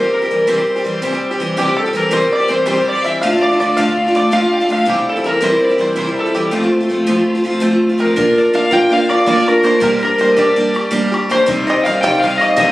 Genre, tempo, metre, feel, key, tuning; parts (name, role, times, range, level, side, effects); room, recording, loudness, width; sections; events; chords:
celtic folk, Celtic slip jig; 109 BPM (dotted quarters); 9/8; straight; F major, Bb major from 8.2 s; A4 = 441 Hz
concert harp; melody; 0.0-12.7 s; F4 to G5; -16 LUFS; equal; slapback echo
clear fiddle; second line; 0.0-12.7 s; F4 to G5; -23 LUFS; left 2 dB
picked steel-string acoustic guitar; accompaniment; 0.0-12.7 s; D2 to Bb4; -15 LUFS; equal
bluegrass banjo; second line; 1.6-12.7 s; F4 to G5; -21 LUFS; right 1 dB
bodhran; percussion; 8.2-12.7 s; -26 LUFS; left 1 dB
light reverb; recorded on a phone in the room, studio reverb; -12 LUFS; side -17 dB against mid
0.0-8.2 A section; 8.2-12.7 B section
0.0 C; 3.2 Dm; 4.9 C; 6.5 F; 8.2 Bb; 9.8 Gm; 11.5 Cm